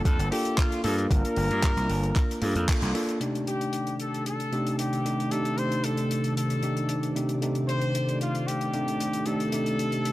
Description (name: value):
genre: nu-disco, nu disco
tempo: 114 BPM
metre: 4/4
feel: straight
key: C dorian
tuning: A4 = 436 Hz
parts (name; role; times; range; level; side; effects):
- bright trumpet section; melody; 0.0-10.1 s; F4 to C5; -32 LUFS; left 1 dB; analog delay
- bell-like tine electric piano; accompaniment; 0.0-10.1 s; C3 to Bb4; -28 LUFS; equal; sidechain pumping
- gritty slap bass; bass; 0.1-2.9 s; G1 to G2; -27 LUFS; equal; overdrive
- damped 70s drum kit; drums; 0.1-10.1 s; handclaps, hi-hat; -35 LUFS; left 2 dB; studio reverb
- electronic kick drum; drums; 0.1-2.8 s; none; -24 LUFS; equal; studio reverb
- string machine, full ensemble; sustained chords; 3.2-10.1 s; C3 to D5; -32 LUFS; equal; ensemble chorus, sidechain pumping
room: light reverb, small room reverb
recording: dry, gritty hardware recording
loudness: -24 LUFS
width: side -16 dB against mid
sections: 0.0-3.2 A section; 3.2-10.1 B section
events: band accent 2.7; filter sweep on string machine 3.2-10.1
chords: 0.0 Gm9; 3.2 Cm69